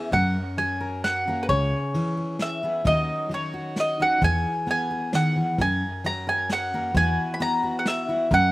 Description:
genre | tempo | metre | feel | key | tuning
acoustic folk duo or small band | 132 BPM | 3/4 | straight | F# mixolydian | A4 = 442 Hz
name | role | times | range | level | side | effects
mandolin | melody | 0.0-8.5 s | B4 to B5 | -24 LUFS | equal | none
fingerpicked steel-string acoustic guitar | accompaniment | 0.0-8.5 s | F#2 to A#4 | -28 LUFS | left 1 dB | slapback echo
upright bass | bass | 0.1-8.5 s | C#2 to F#2 | -25 LUFS | equal | none
vintage brush drum kit | drums | 0.1-8.4 s | kick drum, ride cymbal, snare drum | -34 LUFS | equal | none
room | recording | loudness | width
little or no reverb | recorded outdoors, with no room sound | -22 LUFS | side -18 dB against mid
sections
0.1-8.5 A section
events
none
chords
0.1 F#; 1.5 C#m7; 2.9 D#m7; 4.2 E; 5.6 F#; 6.9 Esus2

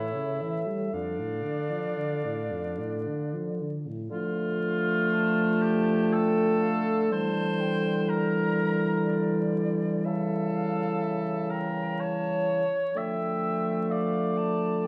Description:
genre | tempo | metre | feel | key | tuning
classical, slow romantic movement for wind quintet | 56-63 BPM | 3/4 | rubato | D minor | A4 = 443 Hz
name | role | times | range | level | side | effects
silver concert flute | melody | 0.0-14.9 s | D5 to Bb5 | -41 LUFS | equal | none
warm oboe | second line | 0.0-14.9 s | D4 to E5 | -34 LUFS | equal | none
dark French horn | accompaniment | 0.0-14.9 s | F2 to G3 | -34 LUFS | equal | none
warm clarinet | accompaniment | 0.0-14.9 s | G3 to F5 | -33 LUFS | equal | none
mellow bassoon | bass | 0.0-14.9 s | A2 to D3 | -34 LUFS | equal | none
room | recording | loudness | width
wet recital hall reverb, RT60 1.4 s | dark, warm production, vinyl crackle | -28 LUFS | mono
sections
0.0-4.1 A section; 4.1-14.9 A section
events
none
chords
0.0 A7; 0.9 Dm/F; 4.1 Dm; 7.1 Em7b5/D; 10.0 A7/C#; 12.9 Dm

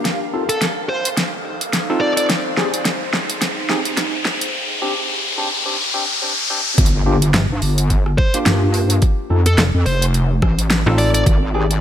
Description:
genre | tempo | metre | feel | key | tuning
glitch hop | 107 BPM | 4/4 | swing 57% on 16ths | G minor | A4 = 439 Hz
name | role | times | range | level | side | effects
overdriven tine electric piano | stabs | 0.0-11.6 s | Bb3 to A4 | -23 LUFS | left 1 dB | phaser, sidechain pumping, low-pass filter, digital delay
riser and impact | sound effects | 0.1-9.0 s | none | -23 LUFS | left 2 dB | none
ethereal airy pad | texture | 0.0-4.5 s | Eb4 to G5 | -28 LUFS | right 1 dB | ensemble chorus, built-in reverb, phaser, sidechain pumping
pop drum kit | drums | 0.1-11.8 s | hi-hat, rim click, snare drum | -20 LUFS | equal | overdrive
bluesy overdriven lead guitar | melody | 0.5-2.2, 8.2-11.2 s | A4 to D5 | -23 LUFS | equal | distortion, digital delay
wobble bass | bass | 6.8-11.8 s | F1 to G2 | -16 LUFS | equal | chorus
electronic kick drum | drums | 6.8-11.4 s | none | -15 LUFS | equal | overdrive
slap-like FM bass | bass | 7.3-11.2 s | F1 to A1 | -16 LUFS | equal | none
room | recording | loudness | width
moderate lush hall reverb, RT60 1.9 s | bright 1980s-style digital production, high-pass filter | -15 LUFS | side -10 dB against mid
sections
0.0-6.8 A section; 6.8-11.8 B section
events
build-up 0.0-6.8; drum fill 0.0-4.5; filter sweep on tine electric piano 0.0-6.8; filter sweep 0.0-6.8; riser 0.1-6.8; drop 6.8-11.8; impact 6.8-9.0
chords
0.1 F7; 2.3 Abmaj7; 4.5 Csus2; 6.8 Gm7; 9.0 F7; 11.3 Abmaj7

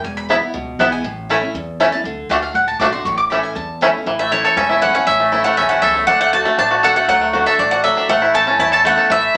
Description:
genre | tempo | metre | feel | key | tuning
bluegrass | 239 BPM | 4/4 | straight | A major | A4 = 440 Hz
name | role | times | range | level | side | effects
picked steel-string acoustic guitar | accompaniment | 0.0-9.4 s | E2 to F#4 | -28 LUFS | equal | none
mandolin | stabs | 0.0-4.0, 8.3-9.4 s | A3 to D6 | -23 LUFS | equal | none
upright bass | bass | 0.0-9.4 s | E1 to E2 | -36 LUFS | equal | none
bluegrass banjo | arpeggios | 0.3-9.4 s | E3 to A4 | -18 LUFS | equal | none
mandolin | melody | 4.2-9.4 s | C#5 to A5 | -18 LUFS | equal | none
room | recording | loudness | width
wet studio reverb, RT60 0.6 s | faint mains hum | -16 LUFS | mono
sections
0.0-4.1 A section; 4.1-9.4 B section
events
mandolin solo 0.0-4.1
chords
0.0 E; 1.0 A; 2.0 D; 3.1 A; 6.1 D; 8.1 A

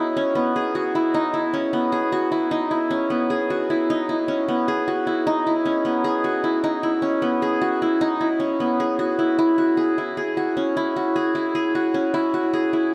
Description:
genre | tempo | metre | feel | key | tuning
rock | 306 BPM (eighths) | 7/8 | straight | E major | A4 = 440 Hz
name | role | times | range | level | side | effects
qanun | solo | 0.0-12.9 s | B3 to G#4 | -22 LUFS | equal | tape echo
room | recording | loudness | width
wet huge ambient reverb, RT60 7.3 s | dreamy mix soaked in reverb | -22 LUFS | mono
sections
0.0-9.4 A section; 9.4-12.9 B section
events
none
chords
0.0 B69; 9.4 Eadd9

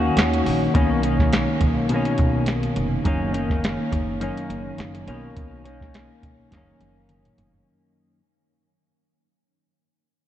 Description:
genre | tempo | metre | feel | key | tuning
indie pop, bedroom pop | 104 BPM | 4/4 | swing 55% on 16ths | F# major | A4 = 440 Hz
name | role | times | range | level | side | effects
clean electric guitar | accompaniment | 0.0-8.2 s | F#2 to F#4 | -23 LUFS | left 1 dB | analog chorus, vibrato effect
upright bass | bass | 0.0-7.6 s | E#1 to D#2 | -28 LUFS | right 1 dB | none
soft vintage rhythm box | drums | 0.2-7.7 s | hi-hat, kick drum, snare drum, toms | -24 LUFS | right 1 dB | none
room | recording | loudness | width
moderate huge ambient reverb, RT60 7.5 s | dreamy mix soaked in reverb, cassette tape | -19 LUFS | side -12 dB against mid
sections
0.0-7.7 A section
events
fade-out 0.0-7.7; drum fill 6.5-7.7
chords
0.0 D#m7; 0.7 Bmaj9; 3.1 F#6; 5.1 Bmaj9; 6.5 F#6

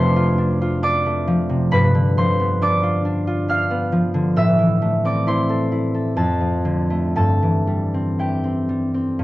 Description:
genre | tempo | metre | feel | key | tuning
classical, solo harp piece | 57-70 BPM | 3/4 | rubato | C major | A4 = 440 Hz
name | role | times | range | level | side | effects
concert harp | solo | 0.0-9.2 s | F2 to F6 | -17 LUFS | equal | none
room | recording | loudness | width
light reverb | worn, warbling old tape, cassette tape, warbly pitch drift | -17 LUFS | side -17 dB against mid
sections
0.0-9.2 A section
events
none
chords
0.0 Dm7/F; 1.7 G7; 4.4 Am; 6.2 Dm/F; 7.2 C/G

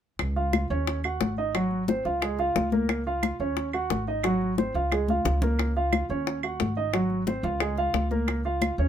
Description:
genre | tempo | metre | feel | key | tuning
Afro-Cuban jazz | 178 BPM | 4/4 | straight | Db major | A4 = 438 Hz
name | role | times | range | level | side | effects
upright bass | bass | 0.2-8.9 s | Ab1 to Eb2 | -30 LUFS | equal | none
bongos | percussion | 0.2-8.8 s | none | -31 LUFS | left 10 dB | none
claves | percussion | 0.2-8.8 s | none | -33 LUFS | right 8 dB | none
congas | percussion | 0.2-8.9 s | none | -31 LUFS | left 4 dB | none
warm baby grand piano | accompaniment | 0.4-8.9 s | Gb3 to Gb5 | -27 LUFS | right 2 dB | none
room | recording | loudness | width
light reverb | minimal, uncompressed stereo recording | -24 LUFS | side -9 dB against mid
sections
0.2-8.9 A section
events
drum fill 5.1-5.6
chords
0.2 Dbadd9; 0.9 Ebm7; 1.5 Ab7; 2.2 Db69; 3.6 Ebm7; 4.2 Ab7; 4.9 Db69; 6.3 Ebm7; 6.9 Ab7; 7.6 Db6

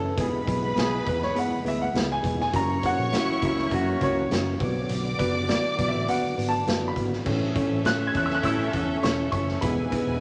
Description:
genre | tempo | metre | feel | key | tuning
uptempo 1960s-style soul | 102 BPM | 4/4 | straight | A major | A4 = 440 Hz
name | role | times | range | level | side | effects
clear grand piano | melody | 0.0-10.2 s | G#4 to G#6 | -32 LUFS | equal | none
mellow reed electric piano | accompaniment | 0.0-10.2 s | B3 to C#5 | -31 LUFS | equal | fast tremolo
bright tonewheel organ | sustained chords | 0.0-10.2 s | D3 to C#4 | -39 LUFS | equal | none
vintage muted picked electric bass | bass | 0.0-10.2 s | E1 to A2 | -34 LUFS | equal | tube saturation
clear symphonic string section | second line | 0.2-10.2 s | C#4 to D6 | -34 LUFS | equal | none
raw garage drum kit | drums | 0.2-10.1 s | crash cymbal, hi-hat, kick drum, snare drum | -32 LUFS | equal | none
clear saxophone section | second line | 2.8-4.3, 8.2-8.9 s | A3 to F#4 | -34 LUFS | equal | none
room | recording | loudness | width
wet large studio reverb, RT60 1.4 s | none | -25 LUFS | mono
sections
0.0-7.3 A section; 7.3-10.2 B section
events
grand piano solo 0.0-7.3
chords
0.2 E; 2.5 F#7; 4.6 Bm; 7.3 A; 9.6 E

